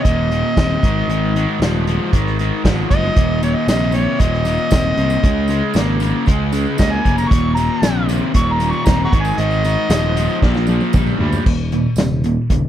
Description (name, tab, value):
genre	classic rock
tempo	116 BPM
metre	4/4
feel	straight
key	unclear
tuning	A4 = 445 Hz
part	overdriven harmonica	melody	0.0-10.4 s	Db5 to Db6	-21 LUFS	right 1 dB	slapback echo
part	cranked stack guitar	riff	0.0-12.7 s	Eb2 to Bb3	-23 LUFS	right 13 dB	overdrive
part	overdriven electric guitar	riff	0.0-12.7 s	Eb2 to Bb3	-22 LUFS	left 11 dB	none
part	overdriven picked electric bass	bass	0.0-12.7 s	Eb1 to D2	-19 LUFS	equal	none
part	vintage drum kit	drums	0.0-12.6 s	crash cymbal, hi-hat, kick drum, snare drum, tambourine, toms	-17 LUFS	equal	none
part	tambourine	percussion	3.4-12.1 s	none	-38 LUFS	right 9 dB	none
room	small room ambience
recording	dry, close 1970s-style studio recording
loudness	-14 LUFS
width	side -11 dB against mid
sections	0.0-11.5 A section; 11.5-12.7 B section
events	harmonica solo 0.0-11.5; drum fill 10.4-11.5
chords	0.0 Eb5; 0.8 Ab5; 3.2 Eb5; 5.2 Db5; 7.3 Eb5; 9.1 Ab5; 10.4 Bb; 11.5 Eb5